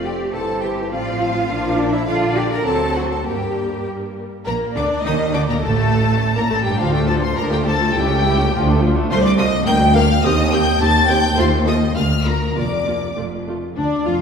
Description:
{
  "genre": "quick classical-period movement for string orchestra",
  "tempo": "103 BPM",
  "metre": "2/4",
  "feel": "rubato",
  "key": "G minor, Bb major from 9.1 s",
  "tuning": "A4 = 440 Hz",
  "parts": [
    { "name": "rich studio violin section", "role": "melody", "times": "0.0-14.2 s", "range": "D4 to A6", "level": "-24 LUFS", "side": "left 5 dB", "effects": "none" },
    { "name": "warm studio viola section", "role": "accompaniment", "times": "0.0-14.1 s", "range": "D3 to Bb4", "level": "-23 LUFS", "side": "equal", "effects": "none" },
    { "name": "rich studio cello section", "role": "bass", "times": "0.0-14.2 s", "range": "C2 to Bb4", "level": "-22 LUFS", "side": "right 1 dB", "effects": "none" },
    { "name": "rich symphonic double bass section", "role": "bass", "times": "0.0-14.2 s", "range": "F1 to G2", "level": "-21 LUFS", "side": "right 2 dB", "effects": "none" },
    { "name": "rich studio violin section", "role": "second line", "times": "0.1-14.2 s", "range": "F4 to Bb5", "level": "-23 LUFS", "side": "left 2 dB", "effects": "none" }
  ],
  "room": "wet scoring stage reverb, RT60 2.0 s",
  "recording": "heard from further back in the room",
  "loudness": "-16 LUFS",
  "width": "side -6 dB against mid",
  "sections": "0.0-4.5 A section; 4.5-13.8 B section",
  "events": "none",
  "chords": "0.4 C/G; 0.9 F/A; 1.5 Bb; 2.1 Gm/Bb; 2.7 D7; 3.3 Gm; 4.5 Bbadd11; 5.6 N.C.; 6.2 Gm; 6.8 Dm; 8.0 A7/C#; 8.5 Dm; 9.1 F7/C; 9.7 Bb/D; 10.2 Cm/Eb; 11.4 F7/Eb; 12.0 Bb/D; 12.6 Bb/F; 13.2 F",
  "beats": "0.35 | 0.93 1.50 | 2.08 2.66 | 3.26 3.86 | 4.47 5.05 | 5.64 6.22 | 6.80 7.38 | 7.96 8.53 | 9.10 9.66 | 10.23 10.80 | 11.38 11.96 | 12.56 13.17 | 13.77"
}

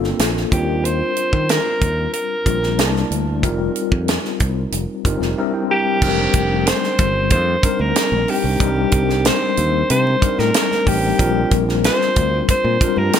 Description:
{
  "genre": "polished 1980s jazz-funk pop",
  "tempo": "93 BPM",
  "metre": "4/4",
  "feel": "straight",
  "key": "unclear",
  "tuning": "A4 = 440 Hz",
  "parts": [
    { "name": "mellow tine electric piano", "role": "accompaniment", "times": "0.0-13.2 s", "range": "G3 to Bb5", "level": "-21 LUFS", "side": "left 4 dB", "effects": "medium stereo tremolo, lush chorus" },
    { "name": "fingered electric bass", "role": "bass", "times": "0.0-13.1 s", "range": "F1 to Eb3", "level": "-21 LUFS", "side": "equal", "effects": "none" },
    { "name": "tight funk drum kit", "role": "drums", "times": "0.0-13.2 s", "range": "crash cymbal, hi-hat, kick drum, snare drum", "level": "-19 LUFS", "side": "right 1 dB", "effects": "gated reverb" },
    { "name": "breathy alto saxophone", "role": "melody", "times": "0.5-13.2 s", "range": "G4 to C5", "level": "-20 LUFS", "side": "equal", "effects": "none" },
    { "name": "congas", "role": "percussion", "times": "6.0-13.2 s", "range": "none", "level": "-34 LUFS", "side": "right 3 dB", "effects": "none" }
  ],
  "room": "light reverb, small room ambience",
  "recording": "none",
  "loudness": "-15 LUFS",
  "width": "side -8 dB against mid",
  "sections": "0.0-6.0 A section; 6.0-13.2 B section",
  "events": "tine electric piano fill 5.1-6.0",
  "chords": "0.0 Gm11; 0.5 Ebmaj13; 2.8 C13; 3.4 F7sus4; 5.4 C9; 6.0 F13sus4; 8.6 Cm7; 11.2 Bb6",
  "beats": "0.20 | 0.85 1.49 2.14 2.79 | 3.44 4.08 4.73 5.38 | 6.02 6.67 7.31 7.96 | 8.61 9.25 9.90 10.55 | 11.19 11.84 12.48 13.13"
}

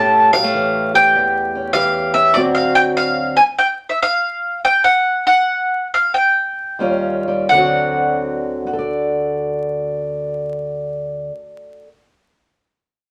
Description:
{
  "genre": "acoustic country blues, solo or duo",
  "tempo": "85-99 BPM",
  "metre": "4/4",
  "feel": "swing 67% on 8ths",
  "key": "unclear",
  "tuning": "A4 = 440 Hz",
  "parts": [
    { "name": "bowl-back mandolin", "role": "melody", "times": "0.0-11.2 s", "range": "D5 to A5", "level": "-16 LUFS", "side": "equal", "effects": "none" },
    { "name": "fingerpicked old ladder-braced acoustic guitar", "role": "accompaniment", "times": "0.0-11.9 s", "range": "D2 to D5", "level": "-21 LUFS", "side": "equal", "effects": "none" }
  ],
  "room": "moderate studio ambience, RT60 0.5 s",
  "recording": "vinyl crackle",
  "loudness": "-17 LUFS",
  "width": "mono",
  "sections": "0.0-7.5 A section; 7.5-10.3 B section",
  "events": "slowing down 2.3-7.5",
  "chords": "0.0 A7; 2.3 D7; 6.8 Eb9; 7.5 D7",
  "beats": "0.53 1.14 1.74 | 2.35 2.95 3.57 4.19 | 4.82 5.46 6.12 6.79 | 7.49 8.19 8.90 9.60"
}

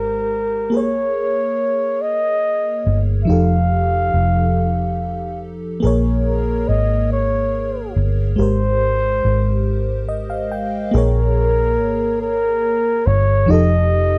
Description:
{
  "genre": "slow six-eight R&B",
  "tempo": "47 BPM (dotted quarters)",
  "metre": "6/8",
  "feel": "straight",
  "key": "Bb dorian",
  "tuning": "A4 = 440 Hz",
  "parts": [
    { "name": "breathy flugelhorn", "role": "melody", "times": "0.0-14.2 s", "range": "Bb4 to F5", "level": "-22 LUFS", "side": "equal", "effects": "none" },
    { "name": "FM electric piano with soft pad layer", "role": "accompaniment", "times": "0.0-14.2 s", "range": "F3 to G5", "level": "-24 LUFS", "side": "equal", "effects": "chorus" },
    { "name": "vintage muted fingered electric bass", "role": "bass", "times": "0.0-14.2 s", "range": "F1 to Bb1", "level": "-21 LUFS", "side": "equal", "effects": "none" }
  ],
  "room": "little or no reverb",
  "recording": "dry, close 1970s-style studio recording",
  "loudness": "-18 LUFS",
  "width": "mono",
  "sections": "0.0-10.9 A section; 10.9-14.2 B section",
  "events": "FM electric piano fill 9.7-10.9",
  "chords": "0.0 Abmaj9; 0.7 Bbm7; 3.3 F9; 5.8 Bbm7; 8.4 Abmaj9; 10.9 Bbm7; 13.5 F9",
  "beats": "| 0.72 2.00 | 3.27 4.55 | 5.83 7.10 | 8.38 9.66 | 10.93 12.21 | 13.49"
}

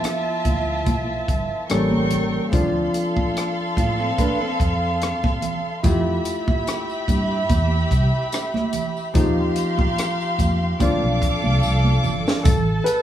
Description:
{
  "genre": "lush 1970s-style soul",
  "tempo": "72 BPM",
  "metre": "4/4",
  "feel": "swing 54% on 16ths",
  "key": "D dorian",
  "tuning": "A4 = 435 Hz",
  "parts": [
    { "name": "dark studio violin section", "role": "second line", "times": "0.0-13.0 s", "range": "F4 to D6", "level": "-25 LUFS", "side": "right 1 dB", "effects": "none" },
    { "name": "warm grand piano", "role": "accompaniment", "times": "0.0-13.0 s", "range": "F3 to B4", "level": "-25 LUFS", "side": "left 2 dB", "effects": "none" },
    { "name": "compact cocktail drum kit", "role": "drums", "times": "0.0-13.0 s", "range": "hi-hat, kick drum, rim click, snare drum", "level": "-22 LUFS", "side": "equal", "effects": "none" },
    { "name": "vintage muted fingered electric bass", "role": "bass", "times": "0.5-12.8 s", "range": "G1 to A2", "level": "-22 LUFS", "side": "equal", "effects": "none" },
    { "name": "congas", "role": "percussion", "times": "0.5-12.7 s", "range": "none", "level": "-29 LUFS", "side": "right 4 dB", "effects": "none" },
    { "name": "electric guitar through a small old amp", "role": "riff", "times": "3.8-5.6 s", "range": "A3 to B4", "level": "-27 LUFS", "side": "right 2 dB", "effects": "none" },
    { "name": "tambourine", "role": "percussion", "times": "5.8-13.0 s", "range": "none", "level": "-40 LUFS", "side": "left 3 dB", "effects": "none" }
  ],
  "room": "moderate studio reverb, RT60 0.8 s",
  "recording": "band playing live in one room, small room ambience",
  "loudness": "-18 LUFS",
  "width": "side -11 dB against mid",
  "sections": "0.0-12.5 A section",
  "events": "drum fill 11.6-12.5",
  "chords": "0.0 G13 (rootless); 1.7 A7b9; 2.5 Dm7; 5.8 Fmaj9; 9.2 Eb69; 10.8 Dm7; 12.5 N.C.",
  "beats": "0.04 0.87 1.70 | 2.53 3.36 4.18 5.01 | 5.84 6.67 7.50 8.32 | 9.15 9.98 10.81 11.63 | 12.46"
}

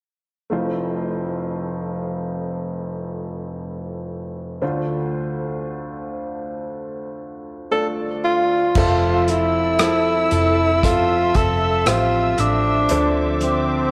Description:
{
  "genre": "pop ballad",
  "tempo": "58 BPM",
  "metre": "4/4",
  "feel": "straight",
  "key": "F major",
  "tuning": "A4 = 440 Hz",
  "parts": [
    { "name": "clear upright piano", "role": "accompaniment", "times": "0.5-13.9 s", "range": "F1 to E5", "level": "-27 LUFS", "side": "equal", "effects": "none" },
    { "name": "warm alto saxophone", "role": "melody", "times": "7.7-13.9 s", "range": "C4 to A4", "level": "-21 LUFS", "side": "equal", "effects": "tape echo" },
    { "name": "muted studio string section", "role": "sustained chords", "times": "8.7-13.9 s", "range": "A4 to E6", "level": "-30 LUFS", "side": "equal", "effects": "none" },
    { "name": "picked steel-string acoustic guitar", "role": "arpeggios", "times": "8.8-13.9 s", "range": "D3 to A4", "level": "-33 LUFS", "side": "equal", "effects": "none" },
    { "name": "vintage muted fingered electric bass", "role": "bass", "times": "8.8-13.9 s", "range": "F1 to D2", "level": "-26 LUFS", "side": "equal", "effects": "none" },
    { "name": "unplugged drum kit", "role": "drums", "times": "8.8-13.6 s", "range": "crash cymbal, hi-hat, kick drum, rim click", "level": "-25 LUFS", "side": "equal", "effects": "none" }
  ],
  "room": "wet echo chamber reverb, RT60 2.2 s",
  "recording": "none",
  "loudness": "-20 LUFS",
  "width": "mono",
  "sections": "0.5-8.8 A section; 8.8-13.9 B section",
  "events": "none",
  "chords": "0.5 Fmaj7; 4.6 Dm7; 8.8 Fmaj7; 12.9 Dm7",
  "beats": "| 0.51 1.55 2.58 3.60 | 4.62 5.64 6.67 7.71 | 8.76 9.80 10.83 11.87 | 12.89"
}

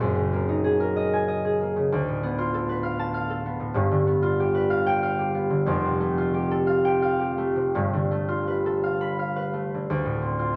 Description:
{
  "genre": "classical, solo harp piece",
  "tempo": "55-65 BPM (dotted quarters)",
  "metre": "6/8",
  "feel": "rubato",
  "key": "unclear",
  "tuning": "A4 = 440 Hz",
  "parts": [
    { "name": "concert harp", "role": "solo", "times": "0.0-10.6 s", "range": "F1 to B5", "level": "-25 LUFS", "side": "equal", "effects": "none" }
  ],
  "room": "moderate studio reverb, RT60 1.0 s",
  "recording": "none",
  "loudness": "-25 LUFS",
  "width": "mono",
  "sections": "0.0-9.9 A section",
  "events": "none",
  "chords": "0.0 F#69; 1.9 Dm6; 3.8 G9; 5.7 Fadd9; 7.8 G9; 9.9 Dm7",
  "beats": "| 0.02 0.96 | 1.90 2.83 | 3.75 4.71 | 5.69 6.69 | 7.75 8.83 | 9.89"
}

